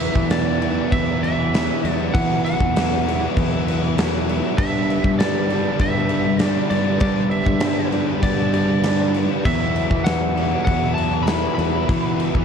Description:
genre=classic rock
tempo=98 BPM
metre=4/4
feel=straight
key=E minor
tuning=A4 = 438 Hz
part: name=lightly driven lead guitar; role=melody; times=0.0-12.4 s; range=D5 to B5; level=-26 LUFS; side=right 1 dB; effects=tape echo
part: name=tonewheel organ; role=sustained chords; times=0.0-12.4 s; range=B3 to E5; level=-36 LUFS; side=equal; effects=none
part: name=biting overdriven guitar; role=riff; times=0.0-12.4 s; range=G2 to E4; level=-26 LUFS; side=left 10 dB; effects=slapback echo
part: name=cranked stack guitar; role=riff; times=0.0-12.4 s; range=E2 to G4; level=-27 LUFS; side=right 10 dB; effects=overdrive
part: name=overdriven electric guitar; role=riff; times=0.0-12.4 s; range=E2 to G3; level=-28 LUFS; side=right 1 dB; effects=none
part: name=growling fingered electric bass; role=bass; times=0.0-12.4 s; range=E2 to G3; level=-24 LUFS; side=equal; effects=overdrive
part: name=huge arena drum kit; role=drums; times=0.0-12.4 s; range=crash cymbal, kick drum, snare drum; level=-22 LUFS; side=equal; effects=none
room=light reverb, small room reverb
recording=cassette tape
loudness=-17 LUFS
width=side -7 dB against mid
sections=0.0-12.4 A section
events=none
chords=0.0 Esus2; 4.6 G; 9.5 Esus2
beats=0.31 0.92 1.53 | 2.14 2.75 3.36 3.97 | 4.58 5.19 5.80 6.41 | 7.02 7.63 8.24 8.85 | 9.46 10.07 10.68 11.29 | 11.90

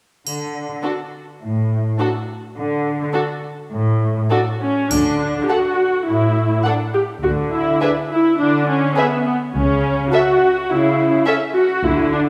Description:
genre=cinematic, playful, whimsical film cue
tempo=104 BPM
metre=4/4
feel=straight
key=D major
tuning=A4 = 440 Hz
part: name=muted chamber cello section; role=bass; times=0.3-12.3 s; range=A2 to D3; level=-24 LUFS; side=equal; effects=none
part: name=triangle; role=percussion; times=0.3-1.4, 4.9-6.0 s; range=none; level=-30 LUFS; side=equal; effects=none
part: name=muted studio violin section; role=melody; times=0.8-11.3 s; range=A4 to F#5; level=-30 LUFS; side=equal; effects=none
part: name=muted studio violin section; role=second line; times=0.8-11.3 s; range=F#4 to E5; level=-26 LUFS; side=equal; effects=none
part: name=muted studio viola section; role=accompaniment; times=0.8-12.2 s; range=B3 to G4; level=-20 LUFS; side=equal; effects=none
part: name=muted studio double bass section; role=bass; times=4.9-12.3 s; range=C#2 to D2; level=-28 LUFS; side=equal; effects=none
room=wet recital hall reverb, RT60 1.6 s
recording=heard from further back in the room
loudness=-18 LUFS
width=mono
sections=0.3-4.9 A section; 4.9-12.3 B section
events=none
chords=0.3 D5; 4.9 D; 7.2 E7(no3)/D; 9.6 A/C# (rootless)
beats=| 0.26 0.85 1.42 2.00 | 2.58 3.15 3.72 4.31 | 4.91 5.50 6.08 6.66 | 7.23 7.82 8.40 8.98 | 9.55 10.13 10.70 11.27 | 11.84

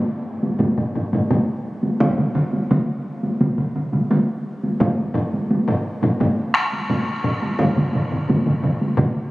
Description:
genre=japanese traditional, taiko drum ensemble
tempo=86 BPM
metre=4/4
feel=straight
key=none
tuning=none
part: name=solo taiko drums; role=percussion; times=0.4-9.1 s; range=none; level=-22 LUFS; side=right 1 dB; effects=none
part: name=taiko ensemble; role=percussion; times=0.6-9.1 s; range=none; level=-23 LUFS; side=equal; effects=none
part: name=solo taiko drums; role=percussion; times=2.0-7.8 s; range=none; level=-28 LUFS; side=equal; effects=none
part: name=taiko ensemble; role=percussion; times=2.0-9.1 s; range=none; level=-22 LUFS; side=right 1 dB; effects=none
room=wet huge ambient reverb, RT60 6.5 s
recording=recorded on a phone in the room, studio reverb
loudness=-18 LUFS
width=side -18 dB against mid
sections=0.0-9.3 A section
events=none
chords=none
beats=0.60 1.30 | 2.01 2.71 3.41 4.11 | 4.81 5.50 6.20 6.90 | 7.59 8.29 8.98

